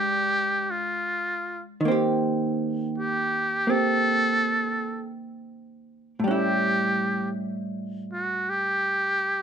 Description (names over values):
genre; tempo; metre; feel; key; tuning
jazz; 54 BPM; 4/4; swing 68% on 8ths; unclear; A4 = 439 Hz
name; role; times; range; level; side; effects
trumpet with metal mute; melody; 0.0-9.4 s; F4 to A4; -24 LUFS; equal; none
vintage hollow-body jazz guitar; accompaniment; 0.0-9.4 s; A2 to G4; -27 LUFS; right 2 dB; none
room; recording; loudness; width
little or no reverb; close, detailed microphones; -23 LUFS; side -7 dB against mid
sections
0.0-9.4 A section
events
none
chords
0.0 Bb6; 1.8 Eb6; 6.2 A7